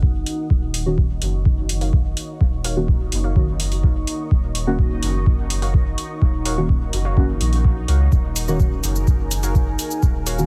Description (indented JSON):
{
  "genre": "dub techno",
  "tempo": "126 BPM",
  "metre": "4/4",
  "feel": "straight",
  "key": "Eb minor",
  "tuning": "A4 = 440 Hz",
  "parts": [
    { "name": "deep dark ambient pad", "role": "sustained chords", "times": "0.0-10.5 s", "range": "Eb4 to Eb6", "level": "-33 LUFS", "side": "equal", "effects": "chorus, built-in reverb, sidechain pumping" },
    { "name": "soft dub sub bass", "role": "bass", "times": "0.0-10.5 s", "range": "Eb1 to Db2", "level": "-25 LUFS", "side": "equal", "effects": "sidechain pumping" },
    { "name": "electronic kick drum", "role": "drums", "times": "0.0-10.1 s", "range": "none", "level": "-20 LUFS", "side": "equal", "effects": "none" },
    { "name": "electronic hi-hat and cabasa", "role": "drums", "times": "0.3-10.5 s", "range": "none", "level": "-30 LUFS", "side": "equal", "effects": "none" },
    { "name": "bubbling stepped-filter texture", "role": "texture", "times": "0.5-10.5 s", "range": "Eb4 to Eb5", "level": "-40 LUFS", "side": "equal", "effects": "chorus, built-in reverb, sidechain pumping" },
    { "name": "deep mellow chord stab", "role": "stabs", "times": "0.9-10.5 s", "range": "Eb3 to Gb4", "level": "-29 LUFS", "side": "equal", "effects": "chorus, phaser, sidechain pumping, dub echo" },
    { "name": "warbly dusty pluck", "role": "riff", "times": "1.8-10.4 s", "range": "Gb4 to F5", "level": "-38 LUFS", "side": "equal", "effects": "chorus, vintage 12-bit sampler grit, sidechain pumping, dub echo" }
  ],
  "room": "digital ambience",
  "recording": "none",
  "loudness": "-20 LUFS",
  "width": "mono",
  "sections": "0.0-10.5 A section",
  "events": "filter sweep on synth stab 0.0-10.5",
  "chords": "0.0 Ebm7"
}